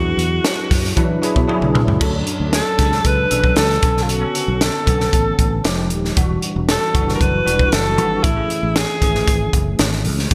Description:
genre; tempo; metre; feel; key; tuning
polished 1980s jazz-funk pop; 116 BPM; 4/4; straight; A major; A4 = 443 Hz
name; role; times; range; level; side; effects
breathy alto saxophone; melody; 0.0-9.8 s; E4 to B4; -22 LUFS; equal; none
bell-like tine electric piano; accompaniment; 0.0-10.3 s; C#3 to B4; -25 LUFS; equal; ensemble chorus
fingered electric bass; bass; 0.0-10.3 s; Eb1 to E3; -24 LUFS; equal; none
crisp fusion drum kit; drums; 0.2-10.3 s; crash cymbal, hi-hat, kick drum, snare drum, toms; -21 LUFS; equal; gated reverb
room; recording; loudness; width
light reverb, studio ambience; bright 1980s-style digital production; -17 LUFS; mono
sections
0.0-2.0 A section; 2.0-10.3 B section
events
drum fill 1.5-2.0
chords
0.0 E9; 2.0 Dmaj7; 3.8 Bm9; 5.6 Fm9; 6.2 Em9; 8.2 Amaj7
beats
0.45 0.97 1.49 | 2.01 2.53 3.05 3.57 | 4.09 4.61 5.13 5.64 | 6.16 6.68 7.20 7.72 | 8.24 8.76 9.28 9.79 | 10.31

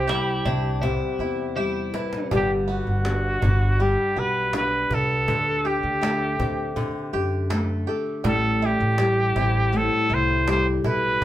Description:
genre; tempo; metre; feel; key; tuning
acoustic pop; 81 BPM; 4/4; straight; G major; A4 = 438 Hz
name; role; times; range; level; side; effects
breathy trumpet; melody; 0.0-11.2 s; F#4 to C5; -24 LUFS; right 1 dB; none
twelve-string electric guitar; second line; 0.0-2.3 s; D4 to E4; -30 LUFS; equal; none
flamenco guitar; accompaniment; 0.0-11.2 s; A2 to B4; -26 LUFS; left 2 dB; none
bluegrass banjo; arpeggios; 0.0-11.2 s; D3 to A4; -34 LUFS; right 7 dB; none
upright bass; bass; 0.0-11.2 s; G1 to F#2; -26 LUFS; equal; none
cajon; drums; 0.1-11.2 s; none; -31 LUFS; equal; none
room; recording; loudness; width
moderate studio reverb, RT60 0.5 s; band playing live in one room; -20 LUFS; side -13 dB against mid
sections
0.0-2.3 A section; 2.3-11.2 A section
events
drum fill 0.8-2.3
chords
0.0 Cmaj7; 2.3 Gmaj7; 5.3 D7sus4; 8.2 Am7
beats
0.08 0.82 1.57 | 2.31 3.05 3.80 4.54 | 5.28 6.02 6.77 7.51 | 8.25 8.99 9.73 10.47 | 11.22

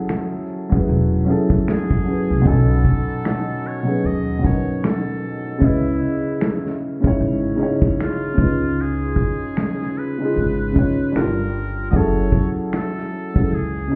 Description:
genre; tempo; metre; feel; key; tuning
lo-fi hip hop; 76 BPM; 4/4; swing 59% on 16ths; C# minor; A4 = 440 Hz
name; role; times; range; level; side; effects
felt-muted upright piano; accompaniment; 0.0-14.0 s; B2 to G#5; -23 LUFS; equal; cassette tape, low-pass filter
vintage brush drum kit; drums; 0.1-14.0 s; finger snaps, hi-hat, kick drum, snare drum; -24 LUFS; equal; vintage 12-bit sampler grit
upright bass; bass; 0.9-13.9 s; E1 to D#2; -24 LUFS; equal; none
trumpet with metal mute; melody; 1.7-14.0 s; E4 to D#5; -34 LUFS; equal; low-pass filter, slapback echo
room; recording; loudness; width
light reverb, small room reverb; heard muffled through a wall, club reverb, EQ; -20 LUFS; mono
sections
0.0-14.0 A section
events
none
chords
0.0 F#m7; 2.5 B13; 5.6 C#m9; 8.4 C#7; 11.1 Gm7; 11.9 F#m7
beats
0.09 0.88 1.67 | 2.46 3.25 4.04 4.83 | 5.62 6.41 7.20 7.99 | 8.77 9.56 10.35 11.14 | 11.93 12.72 13.51

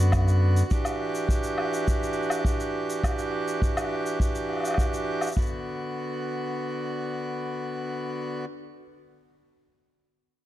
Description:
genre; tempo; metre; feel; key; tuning
folktronica; 103 BPM; 4/4; straight; D major; A4 = 442 Hz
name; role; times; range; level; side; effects
accordion; sustained chords; 0.0-8.5 s; D3 to G4; -29 LUFS; right 1 dB; none
warm sub bass; bass; 0.0-0.6 s; F#2; -20 LUFS; equal; none
kick drum; drums; 0.1-5.5 s; none; -26 LUFS; equal; none
woodblock and shaker; drums; 0.1-5.5 s; none; -33 LUFS; left 2 dB; none
room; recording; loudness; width
light reverb, small room ambience; dark, warm production; -25 LUFS; side -13 dB against mid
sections
0.0-5.4 A section; 5.4-7.7 B section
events
none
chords
0.0 D6; 0.7 Em9; 5.4 D6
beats
0.12 | 0.70 1.29 1.87 2.45 | 3.03 3.62 4.20 4.78 | 5.36 5.95 6.53 7.11

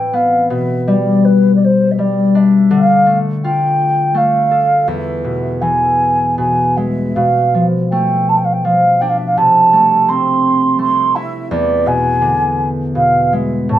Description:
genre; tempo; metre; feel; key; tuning
celtic folk, Celtic slow air; 76-84 BPM; 3/4; rubato; unclear; A4 = 442 Hz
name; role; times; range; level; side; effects
mellow hollow baroque flute; melody; 0.0-13.8 s; B4 to C6; -13 LUFS; right 2 dB; none
concert harp; accompaniment; 0.0-13.8 s; E2 to A4; -15 LUFS; left 2 dB; none
room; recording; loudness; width
wet small room reverb, RT60 0.6 s; band playing live in one room; -11 LUFS; side -12 dB against mid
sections
0.0-13.8 A section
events
none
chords
0.5 G/B; 2.7 Dm; 4.9 E; 7.2 Bm7b5; 9.4 Am/C; 11.5 E7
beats
| 0.49 1.24 1.98 | 2.70 3.42 4.14 | 4.87 5.61 6.38 | 7.15 7.91 8.65 | 9.37 10.09 10.80 | 11.51 12.22 12.95 | 13.69

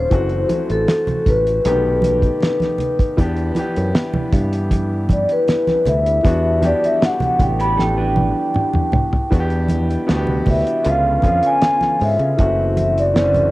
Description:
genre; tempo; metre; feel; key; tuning
lush 1970s-style soul; 78 BPM; 4/4; straight; E minor; A4 = 437 Hz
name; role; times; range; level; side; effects
vibraphone with soft mallets; melody; 0.0-13.5 s; A4 to B5; -18 LUFS; left 1 dB; none
clear concert grand piano; accompaniment; 0.0-13.5 s; C3 to G4; -23 LUFS; left 1 dB; cassette tape
fingered electric bass; bass; 0.0-13.5 s; F#1 to C#3; -20 LUFS; equal; none
cloth-damped thuddy drum kit; drums; 0.1-13.5 s; hi-hat, kick drum, snare drum, toms; -18 LUFS; equal; cassette tape
congas; percussion; 0.1-13.5 s; none; -25 LUFS; right 2 dB; none
dark French horn section; sustained chords; 3.2-13.5 s; B2 to G4; -29 LUFS; equal; cassette tape
electric guitar through a small old amp; riff; 7.6-9.1 s; B3 to B4; -26 LUFS; right 3 dB; wide subtle chorus, cassette tape
room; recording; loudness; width
small room ambience; home recording on cassette; -15 LUFS; side -18 dB against mid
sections
0.0-9.3 A section; 9.3-13.5 B section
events
vibraphone solo 0.0-9.3; drum fill 7.8-9.3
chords
0.1 F#m7b5; 1.6 B7b13; 3.2 Em7; 10.9 C#7b9; 12.4 F#m7b5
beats
| 0.12 0.88 1.65 2.41 | 3.18 3.95 4.71 5.48 | 6.25 7.01 7.78 8.55 | 9.31 10.08 10.85 11.62 | 12.39 13.16

